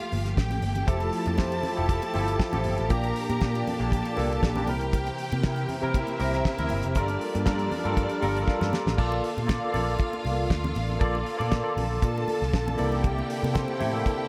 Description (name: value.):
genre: disco.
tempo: 118 BPM.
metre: 4/4.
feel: straight.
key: unclear.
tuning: A4 = 441 Hz.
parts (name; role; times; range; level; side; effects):
rich studio string section; second line; 0.0-14.3 s; D4 to Bb5; -37 LUFS; equal; none.
clear studio string section; sustained chords; 0.0-14.3 s; D3 to A4; -39 LUFS; equal; none.
vintage muted picked electric bass; bass; 0.1-14.0 s; F1 to C3; -32 LUFS; equal; none.
damped 70s drum kit; drums; 0.1-14.2 s; crash cymbal, hi-hat, kick drum, snare drum; -31 LUFS; equal; none.
congas; percussion; 0.1-14.2 s; none; -40 LUFS; equal; none.
barky tine electric piano; accompaniment; 0.9-14.3 s; Bb2 to F5; -31 LUFS; equal; overdrive, ensemble chorus.
room: light reverb, small room ambience.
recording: none.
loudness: -27 LUFS.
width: mono.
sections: 0.0-9.0 A section; 9.0-14.3 B section.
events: tine electric piano fill 8.2-9.0; drum fill 8.5-9.0.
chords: 0.0 Gm9; 0.9 Fmaj9; 2.9 Bb6; 4.7 C7; 7.0 Gm9; 9.0 Bbmaj7; 12.8 C13.